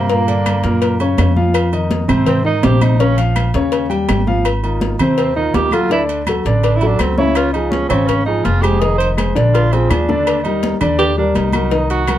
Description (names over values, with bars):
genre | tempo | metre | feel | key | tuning
Afro-Cuban jazz | 165 BPM | 4/4 | straight | unclear | A4 = 440 Hz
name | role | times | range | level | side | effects
breathy tenor saxophone | second line | 0.0-12.2 s | Bb3 to C5 | -19 LUFS | right 4 dB | none
warm grand piano | accompaniment | 0.0-12.2 s | Bb2 to G5 | -18 LUFS | left 1 dB | none
upright bass | bass | 0.0-12.2 s | F1 to Ab2 | -18 LUFS | equal | none
congas | percussion | 0.1-12.2 s | none | -24 LUFS | left 1 dB | none
cowbell and bongos | percussion | 0.1-12.2 s | none | -23 LUFS | left 7 dB | none
agogo bells and timbales | percussion | 0.3-12.2 s | none | -26 LUFS | right 4 dB | none
claves | percussion | 0.5-12.2 s | none | -28 LUFS | left 6 dB | none
room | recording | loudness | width
light reverb | dark, warm production | -13 LUFS | side -12 dB against mid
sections
0.0-4.5 A section; 4.5-12.2 A section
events
tenor saxophone solo 0.0-12.2; drum fill 9.5-10.3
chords
0.1 Gm; 0.8 Gb; 1.6 Fm7; 3.0 Bbm; 3.7 Eb9; 4.5 Ab6; 5.9 D; 7.4 Db; 8.8 Fm7; 9.5 Bb7; 10.3 Ebmaj7